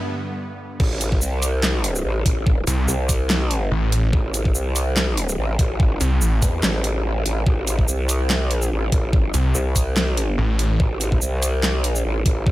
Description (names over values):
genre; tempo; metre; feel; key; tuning
heavy wobble dubstep; 144 BPM; 4/4; swing 55% on 16ths, half-time; A minor; A4 = 437 Hz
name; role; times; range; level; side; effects
supersaw pad; sustained chords; 0.0-0.8 s; G2 to B3; -29 LUFS; right 1 dB; sidechain pumping
growl bass; bass; 0.8-12.5 s; A1 to E2; -21 LUFS; equal; chorus, overdrive
dubstep drum kit; drums; 0.8-12.3 s; crash cymbal, handclaps, hi-hat, shaker, snare drum; -24 LUFS; equal; studio reverb
electronic kick drum; drums; 0.8-12.5 s; none; -19 LUFS; equal; studio reverb
snarling distorted saw bass; bass; 2.7-6.4, 9.3-10.8 s; A1 to C2; -18 LUFS; equal; distortion, overdrive
room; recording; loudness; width
little or no reverb; none; -18 LUFS; side -16 dB against mid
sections
0.8-12.5 A section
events
break 0.0-0.8; drop 0.8-12.5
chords
0.0 G; 0.8 Am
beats
0.38 | 0.80 1.22 1.63 2.05 | 2.46 2.88 3.30 3.71 | 4.13 4.55 4.96 5.38 | 5.80 6.21 6.63 7.05 | 7.46 7.88 8.30 8.71 | 9.13 9.55 9.96 10.38 | 10.80 11.21 11.63 12.05 | 12.46